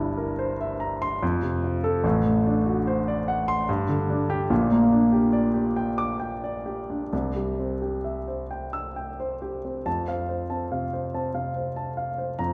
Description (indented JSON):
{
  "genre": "classical, romantic character piece for solo piano",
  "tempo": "63-75 BPM",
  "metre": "3/4",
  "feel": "rubato",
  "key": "F major",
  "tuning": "A4 = 440 Hz",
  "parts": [
    { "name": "warm grand piano", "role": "solo", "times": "0.0-12.5 s", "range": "G1 to E6", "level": "-26 LUFS", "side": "equal", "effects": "none" }
  ],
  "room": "wet recital hall reverb, RT60 1.5 s",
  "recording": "heard from further back in the room",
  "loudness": "-26 LUFS",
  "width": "mono",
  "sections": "0.0-9.9 A section; 9.9-12.5 B section",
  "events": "none",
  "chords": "0.0 C7/G; 1.2 F; 2.0 D7/A; 3.7 G5; 4.5 Gm/Bb; 7.1 C; 9.9 F",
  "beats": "0.39 1.22 | 2.04 2.86 3.68 | 4.50 5.34 6.20 | 7.12 8.05 8.96 | 9.86 10.72 11.57 | 12.39"
}